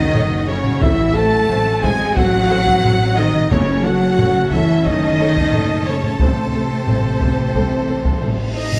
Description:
cinematic, epic orchestral film score; 89 BPM; 4/4; straight; A4 = 440 Hz
dark symphonic violin section; melody; 0.0-8.8 s; C5 to A5; -29 LUFS; equal
warm symphonic violin section; second line; 0.0-8.8 s; C5 to A5; -31 LUFS; equal
mellow French horn section; sustained chords; 0.0-8.8 s; C4 to A4; -23 LUFS; equal
rich chamber string section; sustained chords; 0.0-8.8 s; E3 to A5; -29 LUFS; equal
mellow trumpet section; stabs; 0.0-8.8 s; C5 to A5; -27 LUFS; equal
clear symphonic double bass section; bass; 0.0-8.8 s; F#1 to A1; -25 LUFS; equal
rich symphonic cello section; bass; 0.0-8.5 s; C3 to A3; -24 LUFS; equal
warm symphonic viola section; accompaniment; 0.1-8.8 s; D#4 to C#5; -32 LUFS; equal
taiko ensemble; drums; 0.1-8.8 s; -23 LUFS; equal
timpani; percussion; 3.5-4.5 s; F#2; -25 LUFS; equal
reverse cymbal; sound effects; 8.3-8.8 s; -33 LUFS; equal
silver concert flute; second line; 8.6-8.8 s; D#5; -29 LUFS; equal
moderate scoring stage reverb, RT60 1.8 s; -16 LUFS; mono
0.0-8.8 A section
reverse cymbal 8.3-8.8
0.0 F#m; 0.8 Am; 3.5 F#m; 6.2 Am

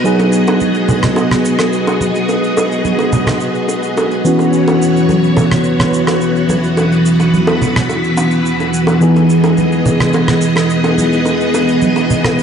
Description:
nu-disco, nu disco; 107 BPM; 4/4; straight; G# minor; A4 = 441 Hz
tine electric piano; accompaniment; 0.0-12.4 s; E3 to G#4; -16 LUFS; right 1 dB; lush chorus, analog delay
string machine, full ensemble; sustained chords; 0.0-12.4 s; E3 to D#5; -14 LUFS; equal; ensemble chorus
cabasa, bongos and congas; percussion; 0.1-12.4 s; -18 LUFS; right 2 dB
rim click; drums; 1.0-12.4 s; -22 LUFS; equal
moderate plate reverb, RT60 1.7 s, small room ambience; dreamy mix soaked in reverb, nothing above 10.4 kHz; -11 LUFS; side -7 dB against mid
0.0-12.4 A section
0.0 G#m7; 4.3 F#7sus4; 9.0 Emaj7

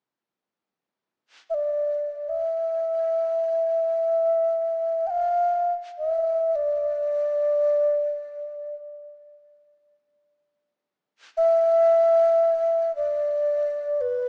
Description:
world meditative, free-time meditation music; free time; A4 = 440 Hz
mellow hollow low xiao; solo; 1.5-14.3 s; B4 to G5; -24 LUFS; equal
wet concert hall reverb, RT60 2.2 s; small speaker sound; -23 LUFS; mono
0.5-14.3 A section

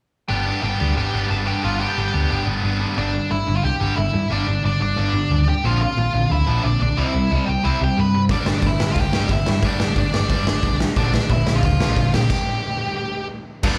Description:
punk rock; 180 BPM; 4/4; straight; A4 = 440 Hz
nasal lead guitar with a parked wah; melody; 0.3-13.3 s; D4 to B5; -27 LUFS; equal; overdrive, slapback echo
distorted electric guitar; riff; 0.3-13.8 s; G2 to D4; -27 LUFS; equal; overdrive, slapback echo
distorted electric guitar; riff; 0.3-13.8 s; G2 to D4; -30 LUFS; equal; distortion, slapback echo
hollow-body short-scale picked electric bass; bass; 0.3-13.8 s; G1 to Bb2; -24 LUFS; equal
raw garage drum kit; drums; 8.3-13.7 s; crash cymbal, hi-hat, kick drum, snare drum; -24 LUFS; equal
distorted electric guitar; riff; 13.6-13.8 s; G2 to G3; -25 LUFS; equal; overdrive
studio reverb; live gig heard through the venue's PA, club reverb; -20 LUFS; mono
0.3-3.0 A section; 3.0-13.6 B section
stop 12.3-13.6
0.3 G; 3.0 G5; 5.6 Bb; 7.0 C; 8.3 G5; 11.0 Bb; 12.3 N.C.

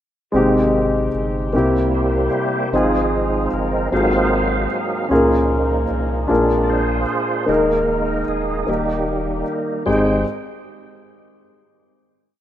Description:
slow gospel; 50 BPM (dotted quarters); 6/8; straight; Ab major; A4 = 436 Hz
warm upright piano; accompaniment; 0.3-10.2 s; Ab1 to Bb4; -18 LUFS; left 1 dB
bright tonewheel organ; sustained chords; 0.3-10.2 s; F3 to G5; -22 LUFS; right 2 dB; slow rotary speaker, chorus vibrato
muted French horn section; sustained chords; 0.3-10.2 s; Eb3 to F5; -31 LUFS; equal
warm sub bass; bass; 0.3-10.2 s; Eb1 to Db2; -25 LUFS; equal
moderate plate reverb, RT60 2.8 s; rough home demo mix; -16 LUFS; side -11 dB against mid
0.3-9.9 verse; 9.9-12.3 final chord
tonewheel organ solo 0.3-9.9
0.3 Abmaj7; 1.5 C7; 2.7 Fm7/Ab; 3.9 Ab13; 5.1 Db6; 6.3 Bb7; 7.5 Ebsus4; 8.7 Eb; 9.9 Abmaj7

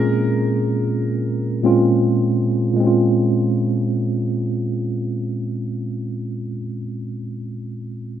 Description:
R&B; free time; Bb minor; A4 = 440 Hz
bright baby grand piano; melody; 0.0-2.0 s; Bb4; -35 LUFS; right 2 dB; digital delay
mellow tine electric piano; accompaniment; 0.0-8.2 s; Bb2 to Ab4; -18 LUFS; right 1 dB; medium stereo tremolo
light reverb, studio reverb; rough home demo mix; -18 LUFS; side -10 dB against mid
0.0-2.8 A section; 2.8-5.9 B section
0.0 Bbm7

